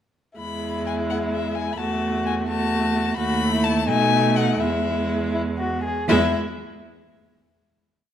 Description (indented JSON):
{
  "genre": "quick classical-period movement for string quartet",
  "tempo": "84 BPM (dotted quarters)",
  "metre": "6/8",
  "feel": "rubato",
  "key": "E major",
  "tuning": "A4 = 441 Hz",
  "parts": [
    { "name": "rich violin", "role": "melody", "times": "0.4-6.4 s", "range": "E5 to B5", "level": "-26 LUFS", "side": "left 9 dB", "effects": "none" },
    { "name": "dark violin", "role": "second line", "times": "0.4-6.4 s", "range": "D#4 to G#4", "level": "-27 LUFS", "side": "left 3 dB", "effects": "none" },
    { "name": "warm viola", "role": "accompaniment", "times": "0.4-6.4 s", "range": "G#3 to A3", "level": "-25 LUFS", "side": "right 2 dB", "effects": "none" },
    { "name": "rich cello", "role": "bass", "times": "0.4-6.4 s", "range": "D#2 to B2", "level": "-26 LUFS", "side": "right 4 dB", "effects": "none" }
  ],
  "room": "moderate scoring stage reverb, RT60 1.5 s",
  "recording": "dark, warm production",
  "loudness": "-20 LUFS",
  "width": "side -10 dB against mid",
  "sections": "0.4-6.1 A section; 6.1-7.5 final chord",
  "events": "none",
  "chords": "0.4 E; 1.8 F#m7/E; 3.2 B7/D#; 3.9 B7; 4.6 E"
}